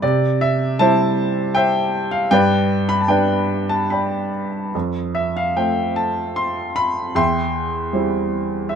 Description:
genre	classical, lyrical solo piano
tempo	77 BPM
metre	3/4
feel	rubato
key	C major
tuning	A4 = 440 Hz
part	warm baby grand piano	solo	0.0-8.8 s	E2 to C6	-17 LUFS	equal	none
room	light reverb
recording	close, detailed microphones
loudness	-17 LUFS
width	side -7 dB against mid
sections	0.0-8.8 A section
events	grand piano fill 8.3-8.8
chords	0.0 C; 2.3 G; 4.7 F; 7.1 C/E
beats	| 0.03 0.80 1.56 | 2.32 3.10 3.91 | 4.75 5.56 6.36 | 7.14 7.92 8.69

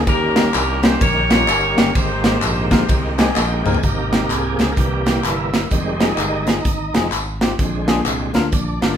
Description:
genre	uptempo gospel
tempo	128 BPM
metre	4/4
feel	swing 62% on 8ths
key	Ab major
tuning	A4 = 440 Hz
part	bright tonewheel organ	sustained chords	0.0-9.0 s	C3 to Ab5	-23 LUFS	right 2 dB	slow rotary speaker, overdrive, chorus vibrato
part	modern bright fingered electric bass	bass	0.0-9.0 s	F1 to Eb2	-24 LUFS	equal	none
part	clear horn section	melody	0.1-3.3 s	Db4 to Db5	-20 LUFS	left 1 dB	none
part	bell-like tine electric piano	accompaniment	0.1-8.9 s	Ab2 to Ab5	-23 LUFS	left 3 dB	none
part	modern studio drum kit	drums	0.1-8.9 s	hi-hat, kick drum, ride cymbal, snare drum, toms	-18 LUFS	right 1 dB	none
part	tambourine and handclaps	percussion	0.1-8.9 s	none	-27 LUFS	left 4 dB	none
room	moderate large studio reverb, RT60 1.0 s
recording	band playing live in one room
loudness	-15 LUFS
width	side -9 dB against mid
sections	0.0-3.8 A section; 3.8-9.0 B section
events	tine electric piano fill 2.9-3.8; tonewheel organ fill 2.9-3.8; drum fill 3.4-3.8; tonewheel organ solo 3.8-9.0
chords	0.1 Eb7; 2.0 Abmaj9; 4.8 C7; 5.7 Fm7; 7.6 Bb7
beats	| 0.07 0.55 1.01 1.48 | 1.95 2.42 2.89 3.36 | 3.83 4.30 4.77 5.24 | 5.71 6.18 6.65 7.12 | 7.59 8.06 8.53

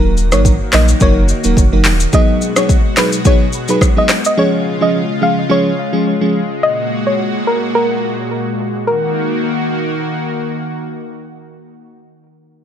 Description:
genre	afrobeats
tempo	107 BPM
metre	4/4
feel	swing 55% on 16ths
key	Eb minor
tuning	A4 = 442 Hz
part	soft round pluck	melody	0.0-10.5 s	Bb4 to F5	-18 LUFS	left 1 dB	chorus, tape echo
part	crystalline FM electric piano	accompaniment	0.0-6.4 s	F3 to Bb4	-16 LUFS	right 1 dB	chorus
part	lush unison pad	sustained chords	0.0-11.9 s	Bb2 to Gb4	-20 LUFS	left 1 dB	chorus
part	warm sub bass	bass	0.0-2.1 s	Eb1 to Bb1	-14 LUFS	equal	none
part	afro-pop drum kit	drums	0.2-4.4 s	handclaps, hi-hat, kick drum, rim click, shaker	-13 LUFS	equal	overdrive
room	little or no reverb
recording	none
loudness	-12 LUFS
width	side -9 dB against mid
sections	0.0-8.9 A section; 8.9-11.1 B section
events	none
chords	0.0 Ebm; 2.1 Abm7; 4.4 Db; 6.6 Gbadd9; 8.9 Ebm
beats	0.45 1.01 1.57 | 2.13 2.69 3.25 3.81 | 4.37 4.93 5.50 6.06 | 6.62 7.18 7.74 8.30 | 8.86 9.42 9.98 10.54

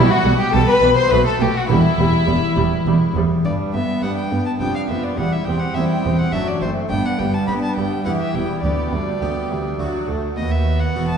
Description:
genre	classical, baroque-style concerto movement with solo episodes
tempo	104 BPM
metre	3/4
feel	straight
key	E minor, G major from 3.5 s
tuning	A4 = 440 Hz
part	rich violin	melody	0.0-11.2 s	E4 to B5	-24 LUFS	left 1 dB	none
part	rich chamber violin section	second line	0.0-11.2 s	B3 to C5	-25 LUFS	left 4 dB	none
part	dark chamber viola section	accompaniment	0.0-11.2 s	E3 to C4	-24 LUFS	right 1 dB	none
part	harpsichord	accompaniment	0.0-11.2 s	D2 to A4	-25 LUFS	equal	none
part	rich chamber cello section	bass	0.0-11.2 s	D2 to B2	-23 LUFS	right 2 dB	none
part	warm studio double bass section	bass	0.0-11.2 s	E1 to D#2	-23 LUFS	right 2 dB	none
part	warm chamber violin section	melody	0.1-11.2 s	F4 to C6	-31 LUFS	left 3 dB	none
room	wet scoring stage reverb, RT60 1.6 s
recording	heard from further back in the room, nothing above 10.5 kHz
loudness	-16 LUFS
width	side -7 dB against mid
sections	0.0-3.5 A section; 3.5-11.2 B section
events	none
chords	0.0 Em/B; 1.1 B7; 1.7 Em; 3.5 G; 4.6 G7/F; 5.2 C/E; 6.3 D7/F#; 6.9 G; 8.1 Em; 8.6 G/D; 9.8 D; 10.4 B7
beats	0.54 1.12 | 1.70 2.29 2.87 | 3.45 4.03 4.61 | 5.18 5.76 6.33 | 6.91 7.48 8.05 | 8.63 9.21 9.80 | 10.38 10.96

